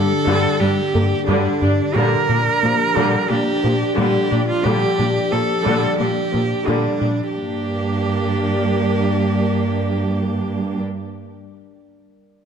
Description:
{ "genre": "cinematic", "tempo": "89 BPM", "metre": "4/4", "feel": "straight", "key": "G minor", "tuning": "A4 = 440 Hz", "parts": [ { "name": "clear cello", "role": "melody", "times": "0.0-10.8 s", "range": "D4 to Bb4", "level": "-22 LUFS", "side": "right 3 dB", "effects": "tape echo" }, { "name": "dark analog pad", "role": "sustained chords", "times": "0.0-10.8 s", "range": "D3 to D5", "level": "-24 LUFS", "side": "left 2 dB", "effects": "chorus, phaser" }, { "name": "rubbery square bass", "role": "riff", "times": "0.0-7.2 s", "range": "G2 to Bb3", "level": "-23 LUFS", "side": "left 3 dB", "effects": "none" }, { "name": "warm symphonic viola section", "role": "accompaniment", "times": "0.3-10.8 s", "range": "D3 to D4", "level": "-23 LUFS", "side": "equal", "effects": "none" }, { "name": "warm symphonic cello section", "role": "bass", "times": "0.3-10.8 s", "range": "G2 to Bb2", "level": "-24 LUFS", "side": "right 2 dB", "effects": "none" } ], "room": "moderate scoring stage reverb, RT60 1.9 s", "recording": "none", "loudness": "-16 LUFS", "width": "side -7 dB against mid", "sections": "0.0-7.3 A section; 7.3-10.0 B section", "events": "none", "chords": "0.0 G5; 2.0 Bb6; 7.3 Gm" }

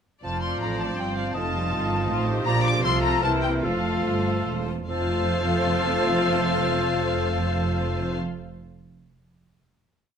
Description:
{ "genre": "quick classical-period movement for symphony orchestra", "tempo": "140-163 BPM", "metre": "3/4", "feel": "straight", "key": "F major", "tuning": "A4 = 440 Hz", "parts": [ { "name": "warm chamber violin section", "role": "melody", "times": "0.2-8.2 s", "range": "F5 to D6", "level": "-30 LUFS", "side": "left 5 dB", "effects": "none" }, { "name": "bright small flute group", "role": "second line", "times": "0.2-8.2 s", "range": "C5 to D6", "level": "-32 LUFS", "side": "left 2 dB", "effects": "none" }, { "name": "rich chamber violin section", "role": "second line", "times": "0.2-8.2 s", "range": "F4 to D5", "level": "-34 LUFS", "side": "left 2 dB", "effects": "none" }, { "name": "warm oboe", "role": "second line", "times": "0.2-8.2 s", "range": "A4 to Eb5", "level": "-33 LUFS", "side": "right 2 dB", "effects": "none" }, { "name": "rich chamber viola section", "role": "accompaniment", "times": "0.2-8.2 s", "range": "D3 to G4", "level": "-32 LUFS", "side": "equal", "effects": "none" }, { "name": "warm bassoon", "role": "accompaniment", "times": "0.2-8.2 s", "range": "E3 to F3", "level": "-32 LUFS", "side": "right 2 dB", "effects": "none" }, { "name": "dark French horn section", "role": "sustained chords", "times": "0.2-8.2 s", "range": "A3 to F4", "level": "-32 LUFS", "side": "left 5 dB", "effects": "none" }, { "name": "rich chamber double bass section", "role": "bass", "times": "0.2-8.2 s", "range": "E1 to C2", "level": "-30 LUFS", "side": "right 3 dB", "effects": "none" }, { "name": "warm chamber cello section", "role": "bass", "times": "0.2-8.2 s", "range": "E2 to C3", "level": "-30 LUFS", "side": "right 3 dB", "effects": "none" } ], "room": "moderate recital hall reverb, RT60 1.3 s", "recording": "close, detailed microphones", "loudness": "-22 LUFS", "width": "side -7 dB against mid", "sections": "0.2-4.9 A section; 4.9-7.4 final chord", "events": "slowing down 1.9-4.9", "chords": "0.2 F; 1.4 F7; 2.5 Bb; 2.8 F/C; 3.2 C7; 3.6 F" }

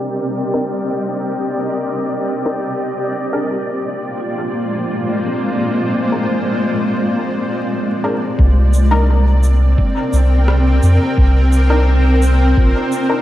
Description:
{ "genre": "ambient dub", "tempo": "86 BPM", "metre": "4/4", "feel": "straight", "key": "C minor", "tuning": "A4 = 440 Hz", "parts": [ { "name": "granular cloud pad", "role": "sustained chords", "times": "0.0-13.2 s", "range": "Ab3 to G5", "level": "-18 LUFS", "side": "equal", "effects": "built-in reverb" }, { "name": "bubbling stepped-filter texture", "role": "texture", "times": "0.0-8.4 s", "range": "G4 to G5", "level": "-30 LUFS", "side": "left 1 dB", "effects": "chorus, built-in reverb" }, { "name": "filtered dub chord stab", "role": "stabs", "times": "0.5-13.2 s", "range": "C4 to Bb4", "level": "-24 LUFS", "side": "left 1 dB", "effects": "chorus, dub echo" }, { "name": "vibraphone with medium mallets", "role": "arpeggios", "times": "4.2-13.2 s", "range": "C4 to F4", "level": "-25 LUFS", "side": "left 1 dB", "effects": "dub echo" }, { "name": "soft dub sub bass", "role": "bass", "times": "8.4-12.7 s", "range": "Bb1 to F2", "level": "-11 LUFS", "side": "equal", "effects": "none" }, { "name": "electronic kick drum", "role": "drums", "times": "8.4-12.7 s", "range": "none", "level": "-16 LUFS", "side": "equal", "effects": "none" }, { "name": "electronic shaker and rim click", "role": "drums", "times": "8.7-13.1 s", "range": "none", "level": "-28 LUFS", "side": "right 1 dB", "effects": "dub echo" } ], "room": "moderate lush hall reverb, RT60 2.2 s", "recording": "dreamy mix soaked in reverb, vinyl crackle, low-pass filter", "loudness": "-14 LUFS", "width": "side -14 dB against mid", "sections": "0.0-8.4 A section; 8.4-13.2 B section", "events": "filter sweep on synth stab 0.0-8.4; filter sweep 0.0-8.4", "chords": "0.0 Cm9; 2.8 Bb7; 8.4 Cm9" }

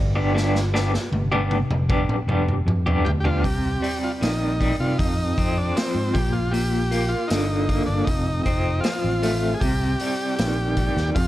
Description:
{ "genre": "psychedelic rock", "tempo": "78 BPM", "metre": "4/4", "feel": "straight", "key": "C minor from 3.4 s", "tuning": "A4 = 440 Hz", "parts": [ { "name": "fingered electric bass", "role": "bass", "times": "0.0-11.3 s", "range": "F1 to C3", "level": "-24 LUFS", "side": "equal", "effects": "none" }, { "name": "overtone-sweeping drone", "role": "drone", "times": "0.0-3.5 s", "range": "G2", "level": "-39 LUFS", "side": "equal", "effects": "none" }, { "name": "electric guitar through a small old amp", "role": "riff", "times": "0.2-11.3 s", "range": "F2 to G4", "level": "-25 LUFS", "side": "equal", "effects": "tremolo" }, { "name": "vintage drum kit", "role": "drums", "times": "0.4-11.3 s", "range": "hi-hat, kick drum, snare drum, toms", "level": "-26 LUFS", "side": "equal", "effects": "none" }, { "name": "combo organ", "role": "melody", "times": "3.0-11.3 s", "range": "C4 to Ab4", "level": "-27 LUFS", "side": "equal", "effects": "tape echo" } ], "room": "little or no reverb", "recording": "none", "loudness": "-20 LUFS", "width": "side -14 dB against mid", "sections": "0.0-3.4 A section; 3.4-11.3 B section", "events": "drum fill 0.4-3.4", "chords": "0.0 G; 3.4 Cm; 5.0 Fm; 6.1 Bb; 8.1 F; 9.6 Cm" }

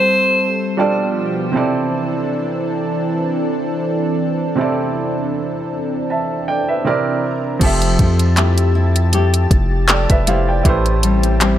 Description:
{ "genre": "contemporary R&B", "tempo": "79 BPM", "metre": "4/4", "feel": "swing 54% on 16ths", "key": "C major", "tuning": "A4 = 440 Hz", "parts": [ { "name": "clear alto saxophone", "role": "melody", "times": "0.0-1.1 s", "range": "C5", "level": "-18 LUFS", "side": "equal", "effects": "tape echo" }, { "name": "warm baby grand piano", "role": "accompaniment", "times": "0.0-11.6 s", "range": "C3 to A5", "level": "-20 LUFS", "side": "right 3 dB", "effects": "none" }, { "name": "lush unison pad", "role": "sustained chords", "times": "0.0-11.6 s", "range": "B2 to A5", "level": "-21 LUFS", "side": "equal", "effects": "chorus" }, { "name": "nylon-string guitar", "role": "arpeggios", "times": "7.6-11.6 s", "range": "A2 to G4", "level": "-21 LUFS", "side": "left 3 dB", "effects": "tape echo" }, { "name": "long sustained 808-style bass", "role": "bass", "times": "7.6-11.6 s", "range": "F1 to F2", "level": "-16 LUFS", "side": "equal", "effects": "none" }, { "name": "smooth R&B drum kit", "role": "drums", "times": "7.6-11.6 s", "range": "crash cymbal, handclaps, hi-hat, kick drum", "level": "-16 LUFS", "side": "equal", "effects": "none" } ], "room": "light reverb", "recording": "none", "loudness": "-15 LUFS", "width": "side -11 dB against mid", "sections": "0.0-7.6 A section; 7.6-11.6 B section", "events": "none", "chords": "0.0 Am7; 0.8 G7; 1.5 C69; 6.9 C9; 7.6 Fmaj9; 10.7 Am7" }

